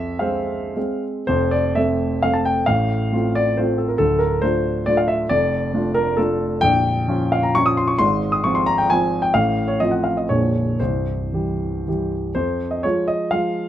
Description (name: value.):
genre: classical, romantic triple-time dance for piano with dotted rhythms.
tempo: 105-148 BPM.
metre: 3/4.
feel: rubato.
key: F major, F minor from 6.6 s.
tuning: A4 = 440 Hz.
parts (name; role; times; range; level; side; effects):
warm grand piano; solo; 0.0-13.7 s; Bb0 to Eb6; -18 LUFS; equal; none.
room: light reverb.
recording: none.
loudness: -17 LUFS.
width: side -11 dB against mid.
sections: 0.0-1.3 A section; 1.3-12.4 B section; 12.4-13.7 A section.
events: none.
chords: 0.0 Fm; 1.3 F; 2.7 F/A; 4.0 Dm7; 5.3 Dm/F; 6.6 Bbm; 8.0 Fm/Ab; 9.3 F/A; 10.3 Bbm7; 10.8 C; 12.4 Fm.